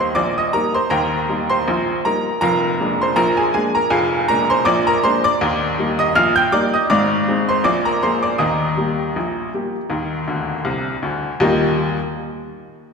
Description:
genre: ragtime piano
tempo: 80 BPM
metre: 2/4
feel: swing 55% on 16ths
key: Eb major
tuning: A4 = 441 Hz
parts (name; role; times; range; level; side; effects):
- bright upright piano; solo; 0.0-12.0 s; F1 to G6; -16 LUFS; equal; none
room: wet concert hall reverb, RT60 2.3 s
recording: recorded in a church or concert hall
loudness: -16 LUFS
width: side -5 dB against mid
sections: 0.0-11.4 A section; 11.4-12.9 B section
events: upright piano fill 10.3-11.4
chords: 0.0 Eb; 2.4 Bb7/F; 5.4 Eb; 6.9 Ab; 7.7 Bb7; 8.4 Eb

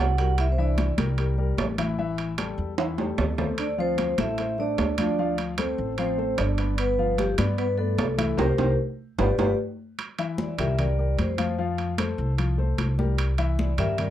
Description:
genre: Afro-Cuban jazz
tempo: 150 BPM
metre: 4/4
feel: straight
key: C major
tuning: A4 = 441 Hz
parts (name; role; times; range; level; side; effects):
- vibraphone with medium hard mallets; melody; 0.0-1.0, 3.6-14.1 s; G4 to F#5; -28 LUFS; left 1 dB; none
- breathy trombone; second line; 0.0-1.0, 3.6-9.5 s; G3 to F#4; -32 LUFS; right 10 dB; none
- warm baby grand piano; accompaniment; 0.0-14.1 s; E3 to F5; -30 LUFS; left 5 dB; none
- upright bass; bass; 0.0-14.1 s; G1 to G2; -26 LUFS; equal; none
- congas; percussion; 0.2-14.1 s; none; -31 LUFS; left 1 dB; none
- timbales; percussion; 0.2-14.1 s; none; -31 LUFS; right 6 dB; none
room: little or no reverb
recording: dry, close 1970s-style studio recording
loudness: -23 LUFS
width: side -12 dB against mid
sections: 0.0-10.0 A section; 10.0-14.1 B section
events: drum fill 2.8-3.6, 9.4-10.0; band accent 8.4-10.0; vibraphone solo 10.0-14.1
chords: 0.4 C13; 2.0 A5; 3.6 Dm7; 6.8 G13; 8.4 C5; 9.2 G7; 10.0 C9; 11.6 Fadd9; 13.2 C9

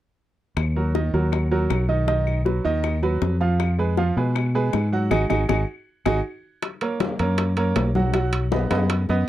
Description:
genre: latin, salsa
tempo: 158 BPM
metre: 4/4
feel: straight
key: Eb minor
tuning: A4 = 442 Hz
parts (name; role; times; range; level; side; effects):
- fingered electric bass; bass; 0.6-9.3 s; Ab1 to Cb3; -22 LUFS; left 1 dB; none
- bongos; percussion; 0.6-9.3 s; none; -28 LUFS; left 15 dB; none
- claves; percussion; 0.6-6.1 s; none; -34 LUFS; left 9 dB; none
- bright baby grand piano; accompaniment; 0.8-9.3 s; Eb3 to Gb5; -24 LUFS; right 4 dB; none
- congas; percussion; 6.6-9.3 s; none; -29 LUFS; left 4 dB; none
- timbales; percussion; 6.6-9.1 s; none; -30 LUFS; right 3 dB; none
room: little or no reverb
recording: dry, close 1970s-style studio recording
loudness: -20 LUFS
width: side -13 dB against mid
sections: 0.6-6.6 A section; 6.6-9.3 B section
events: band accent 5.1-6.6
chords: 0.6 Ebm; 2.1 B; 3.6 Fdim; 5.1 Ab5; 6.6 Gbadd11; 8.1 B

